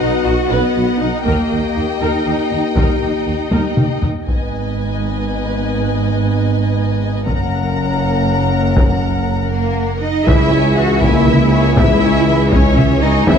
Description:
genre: cinematic, epic orchestral film score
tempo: 80 BPM (dotted quarters)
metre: 6/8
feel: straight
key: G# minor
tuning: A4 = 437 Hz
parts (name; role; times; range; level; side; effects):
- warm symphonic violin section; melody; 0.0-13.4 s; A#4 to A#5; -25 LUFS; left 4 dB; none
- warm symphonic violin section; second line; 0.0-13.4 s; G#4 to G#5; -25 LUFS; left 3 dB; none
- warm symphonic viola section; accompaniment; 0.0-13.4 s; E3 to B4; -24 LUFS; right 1 dB; none
- dark French horn section; sustained chords; 0.0-13.4 s; G#3 to G4; -21 LUFS; left 5 dB; none
- mellow tuba; bass; 0.0-4.1, 10.3-13.4 s; E1 to D#2; -20 LUFS; right 3 dB; none
- rich symphonic double bass section; bass; 0.0-13.4 s; F#1 to E2; -20 LUFS; right 2 dB; none
- warm symphonic cello section; bass; 0.0-13.4 s; F#2 to F#4; -21 LUFS; right 2 dB; none
- taiko ensemble; drums; 1.3-13.4 s; none; -16 LUFS; left 1 dB; none
room: moderate scoring stage reverb, RT60 1.6 s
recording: dark, warm production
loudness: -13 LUFS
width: side -7 dB against mid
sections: 0.0-4.3 A section; 4.3-10.3 B section; 10.3-13.4 C section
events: drum fill 3.5-4.3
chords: 0.0 B; 1.3 D#; 4.3 G#m; 7.3 F#; 10.3 C#m

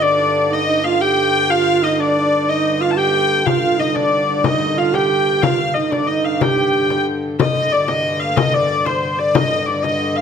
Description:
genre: medieval dance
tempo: 122 BPM (dotted quarters)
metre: 6/8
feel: straight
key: unclear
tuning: A4 = 440 Hz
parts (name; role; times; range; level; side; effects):
- warm hurdy-gurdy; melody; 0.0-10.2 s; C5 to A5; -17 LUFS; left 2 dB; none
- alto flute; second line; 0.0-7.1 s; D4 to G4; -19 LUFS; right 6 dB; none
- hand-pumped harmonium; drone; 0.0-10.2 s; G2 to D3; -25 LUFS; left 1 dB; none
- frame drum; percussion; 3.5-10.0 s; none; -21 LUFS; left 6 dB; none
room: wet recital hall reverb, RT60 1.7 s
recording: none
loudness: -14 LUFS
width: side -7 dB against mid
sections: 0.0-7.4 A section; 7.4-10.2 B section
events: none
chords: none

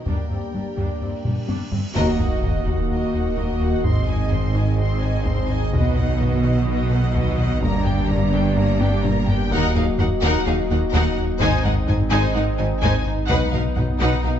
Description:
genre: cinematic, hybrid orchestral and electronic film score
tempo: 127 BPM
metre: 4/4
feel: straight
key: unclear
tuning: A4 = 440 Hz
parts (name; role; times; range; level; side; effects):
- rich studio violin section; second line; 0.0-14.3 s; Gb4 to G5; -32 LUFS; left 3 dB; none
- hollow soft pad; sustained chords; 0.0-14.4 s; Eb3 to Eb5; -28 LUFS; right 1 dB; chorus
- mellow French horn section; sustained chords; 0.0-14.4 s; Bb3 to Gb4; -29 LUFS; left 3 dB; none
- rich symphonic viola section; accompaniment; 0.1-14.3 s; G3 to Gb4; -31 LUFS; right 1 dB; none
- rubbery square bass; riff; 0.1-14.4 s; Eb2 to G3; -26 LUFS; left 2 dB; none
- clear symphonic double bass section; bass; 0.1-14.3 s; G1 to Eb2; -27 LUFS; right 3 dB; none
- rich symphonic cello section; bass; 0.1-14.3 s; Eb2 to B2; -27 LUFS; right 3 dB; none
- taiko ensemble; drums; 0.1-14.0 s; none; -26 LUFS; equal; none
- cymbal swell and sub drop; sound effects; 1.4-3.8 s; none; -30 LUFS; equal; none
- rich symphonic violin section; melody; 1.9-14.3 s; Eb5 to C6; -30 LUFS; left 3 dB; none
- saturated sub bass; bass; 2.0-14.4 s; Eb1 to B1; -27 LUFS; equal; none
room: moderate recital hall reverb, RT60 1.5 s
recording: dark, warm production, nothing above 7.8 kHz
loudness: -18 LUFS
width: side -9 dB against mid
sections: 0.0-2.0 A section; 2.0-14.4 B section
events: drum fill 1.3-2.0, 8.8-9.5; cymbal swell 1.4-2.0; band accent 2.0-2.4; impact 2.0-3.9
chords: 0.1 Gm; 2.0 Ebm; 3.9 Ab; 5.7 B; 7.6 Gm; 9.5 Ebm; 11.4 Ab; 13.3 B

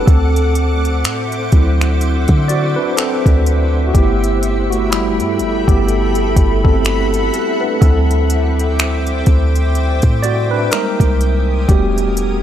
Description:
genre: contemporary R&B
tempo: 62 BPM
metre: 4/4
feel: swing 58% on 16ths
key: unclear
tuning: A4 = 439 Hz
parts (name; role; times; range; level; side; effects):
- tine electric piano; accompaniment; 0.0-12.4 s; F#3 to D5; -18 LUFS; equal; medium stereo tremolo
- granular cloud pad; sustained chords; 0.0-12.4 s; A4 to D6; -21 LUFS; equal; built-in reverb
- clean 808-style bass; bass; 0.0-12.4 s; E1 to D3; -16 LUFS; equal; none
- smooth R&B drum kit; drums; 0.1-12.4 s; finger snaps, hi-hat, kick drum; -14 LUFS; equal; none
room: little or no reverb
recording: dry, gritty hardware recording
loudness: -12 LUFS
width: side -11 dB against mid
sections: 0.0-12.4 A section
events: tine electric piano solo 0.0-12.4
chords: 0.1 D9; 3.9 G69; 7.8 D9sus4; 10.7 G#maj9/B#; 11.7 Em11

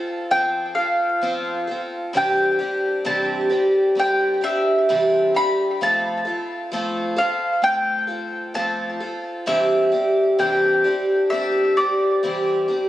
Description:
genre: acoustic folk duo or small band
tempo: 65 BPM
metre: 4/4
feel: straight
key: C major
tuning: A4 = 436 Hz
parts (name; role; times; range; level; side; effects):
- mandolin; melody; 0.0-12.6 s; D5 to B5; -21 LUFS; equal; plate reverb, tape echo
- picked twelve-string acoustic guitar; accompaniment; 0.0-12.9 s; C3 to A4; -21 LUFS; equal; none
room: moderate large studio reverb, RT60 0.9 s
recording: recorded on a phone in the room, club reverb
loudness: -18 LUFS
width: side -14 dB against mid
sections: 0.0-12.9 A section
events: none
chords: 0.0 F; 2.1 Cadd9; 5.8 F; 9.5 Cadd9

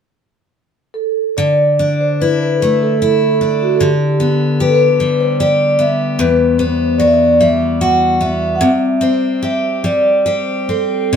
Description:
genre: celtic folk, Celtic slow air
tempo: 74 BPM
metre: 3/4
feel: rubato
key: D mixolydian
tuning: A4 = 440 Hz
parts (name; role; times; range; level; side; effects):
- vibraphone with soft mallets; melody; 0.9-11.2 s; F#4 to F#5; -14 LUFS; right 1 dB; none
- picked steel-string acoustic guitar; accompaniment; 1.4-11.2 s; E2 to G4; -15 LUFS; left 2 dB; none
room: moderate stone room reverb, RT60 0.9 s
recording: band playing live in one room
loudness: -12 LUFS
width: side -7 dB against mid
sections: 0.0-1.4 A section; 1.4-11.2 B section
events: none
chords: 0.0 N.C.; 1.4 Dsus2; 3.8 G/D; 6.2 Emadd9; 8.6 C5

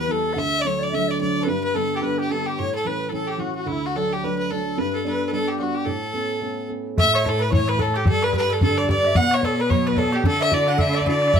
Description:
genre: celtic folk, Celtic reel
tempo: 218 BPM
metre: 4/4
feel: swing 57% on 8ths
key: A mixolydian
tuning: A4 = 435 Hz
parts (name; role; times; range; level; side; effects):
- clear fiddle; melody; 0.0-11.4 s; E4 to F#5; -24 LUFS; equal; none
- wooden flute; second line; 0.0-11.4 s; E4 to F#5; -27 LUFS; left 4 dB; none
- dark upright piano; accompaniment; 0.0-11.4 s; D2 to D5; -26 LUFS; right 2 dB; none
- mandolin; second line; 7.0-11.4 s; G4 to F#5; -28 LUFS; right 2 dB; none
- clear cello; bass; 7.0-11.4 s; G2 to D3; -24 LUFS; right 1 dB; none
- bodhran; percussion; 7.0-11.4 s; none; -22 LUFS; left 1 dB; none
room: moderate studio ambience, RT60 0.5 s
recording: none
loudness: -19 LUFS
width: side -7 dB against mid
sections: 0.0-7.0 A section; 7.0-11.4 B section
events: none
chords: 0.4 D; 1.5 G; 2.6 A; 3.7 D; 4.8 G; 5.9 Aadd9; 7.0 A; 8.1 Gadd9; 9.2 Bmadd9; 10.3 Dadd9

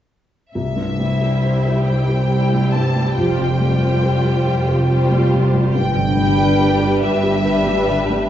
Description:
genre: cinematic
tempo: 46 BPM (dotted quarters)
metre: 6/8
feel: rubato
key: C major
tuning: A4 = 440 Hz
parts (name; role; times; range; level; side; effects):
- warm symphonic violin section; melody; 0.5-8.3 s; E5 to A5; -24 LUFS; left 2 dB; none
- felt-muted upright piano; accompaniment; 0.6-8.3 s; C2 to C5; -22 LUFS; left 1 dB; none
- concert harp; arpeggios; 0.6-8.3 s; F2 to G5; -23 LUFS; left 2 dB; none
- warm symphonic cello section; bass; 0.6-8.2 s; C2 to G2; -23 LUFS; right 2 dB; none
- warm symphonic double bass section; bass; 0.6-8.2 s; F1 to C2; -21 LUFS; right 1 dB; none
- warm symphonic violin section; second line; 1.0-8.3 s; G4 to C5; -25 LUFS; left 2 dB; none
- warm symphonic viola section; accompaniment; 1.0-8.3 s; G3 to F4; -24 LUFS; right 2 dB; none
room: wet recital hall reverb, RT60 1.5 s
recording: heard from further back in the room, nothing above 7.8 kHz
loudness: -15 LUFS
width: side -11 dB against mid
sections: 0.6-8.3 A section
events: none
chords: 0.6 C; 3.2 Fsus2; 5.7 G

